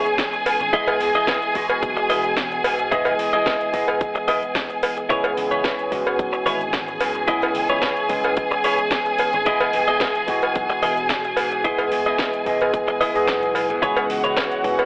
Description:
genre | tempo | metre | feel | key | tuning
nu-disco, nu disco | 110 BPM | 4/4 | straight | unclear | A4 = 445 Hz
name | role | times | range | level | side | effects
barky tine electric piano | accompaniment | 0.0-14.9 s | E3 to D#5 | -24 LUFS | equal | lush chorus, sidechain pumping, dub echo
warm studio violin section | sustained chords | 0.0-14.9 s | F#4 to G#5 | -23 LUFS | equal | sidechain pumping
direct-recorded clean electric guitar | riff | 0.0-14.6 s | E4 to D#5 | -23 LUFS | equal | lush chorus, dub echo
house drum kit | drums | 0.1-14.9 s | hi-hat, snare drum | -27 LUFS | equal | none
electronic kick drum | drums | 0.2-14.8 s | none | -28 LUFS | equal | none
slap bass | bass | 0.5-14.8 s | E1 to G#2 | -35 LUFS | equal | none
cowbell | percussion | 0.5-14.9 s | none | -25 LUFS | equal | none
room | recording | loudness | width
light reverb, digital ambience | telephone sound | -18 LUFS | side -28 dB against mid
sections
0.0-14.9 A section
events
none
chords
0.0 C#m7; 0.7 Emaj7; 5.1 C#m7; 9.5 Emaj7; 13.8 C#m7

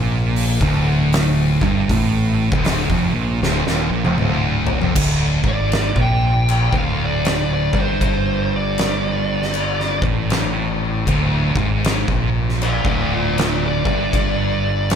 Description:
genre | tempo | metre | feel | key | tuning
stoner and doom metal | 78 BPM | 4/4 | swing 63% on 8ths | D minor | A4 = 440 Hz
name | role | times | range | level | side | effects
fuzz guitar | riff | 0.0-4.9 s | D2 to Bb2 | -25 LUFS | left 1 dB | distortion
thick fuzz guitar | riff | 0.0-15.0 s | D2 to Bb2 | -24 LUFS | left 9 dB | distortion
thick fuzz guitar | riff | 0.0-15.0 s | D2 to Bb2 | -22 LUFS | right 7 dB | distortion
growling fingered electric bass | bass | 0.0-15.0 s | D1 to Bb1 | -23 LUFS | equal | overdrive
oversized low-tuned drum kit | drums | 0.4-15.0 s | crash cymbal, hi-hat, kick drum, snare drum, toms | -22 LUFS | equal | none
fuzz lead guitar | melody | 5.5-15.0 s | F4 to G5 | -23 LUFS | left 1 dB | distortion, tape echo
room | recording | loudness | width
little or no reverb | none | -16 LUFS | side -8 dB against mid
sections
0.0-5.0 A section; 5.0-15.0 B section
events
drum fill 3.4-5.0; lead electric guitar solo 5.0-15.0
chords
0.0 Dm; 5.0 D5

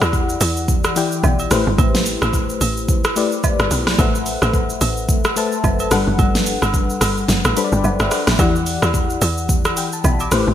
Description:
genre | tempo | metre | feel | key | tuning
amapiano | 109 BPM | 4/4 | swing 58% on 16ths | E minor | A4 = 439 Hz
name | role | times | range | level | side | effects
FM electric piano with tremolo | accompaniment | 0.0-10.5 s | E3 to D6 | -21 LUFS | left 4 dB | none
tight log drum bass | bass | 0.0-10.5 s | F#1 to E2 | -20 LUFS | equal | none
deep house drum kit | drums | 0.0-10.5 s | hi-hat, kick drum, rim click, shaker, snare drum | -18 LUFS | equal | gated reverb
agogo bells and woodblock | percussion | 0.0-10.3 s | none | -28 LUFS | right 6 dB | none
room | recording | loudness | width
light reverb | bright 1980s-style digital production | -15 LUFS | side -10 dB against mid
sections
0.0-10.5 A section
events
kick muted 7.3-8.4; FM electric piano fill 7.3-8.4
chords
0.0 Em7; 1.5 Am9; 4.0 Am69; 5.9 Gmaj9; 8.4 Em7

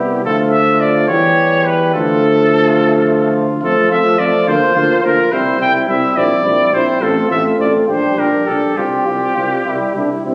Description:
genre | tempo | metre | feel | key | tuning
classical, brass quintet | 70 BPM (dotted quarters) | 6/8 | uneven beats, rubato | unclear | A4 = 440 Hz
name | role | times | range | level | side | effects
bright trumpet | melody | 0.0-10.3 s | G4 to G5 | -18 LUFS | equal | none
clear flugelhorn | second line | 0.0-10.3 s | E4 to G4 | -23 LUFS | equal | none
warm French horn | accompaniment | 0.0-10.3 s | G3 to D4 | -22 LUFS | equal | none
warm trombone | accompaniment | 0.0-10.3 s | E3 to A3 | -22 LUFS | equal | none
warm tuba | bass | 0.0-10.3 s | A1 to F2 | -23 LUFS | equal | none
room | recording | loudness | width
wet recital hall reverb, RT60 1.5 s | recorded on a phone in the room, club reverb | -14 LUFS | mono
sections
0.0-10.3 A section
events
none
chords
0.2 Dm; 1.1 C#dim/E; 1.9 Dm; 3.6 F; 4.5 Bb/D; 5.3 C; 6.2 C7/Bb; 7.0 F/A; 7.9 Gm/Bb; 8.8 Csus4; 9.7 C

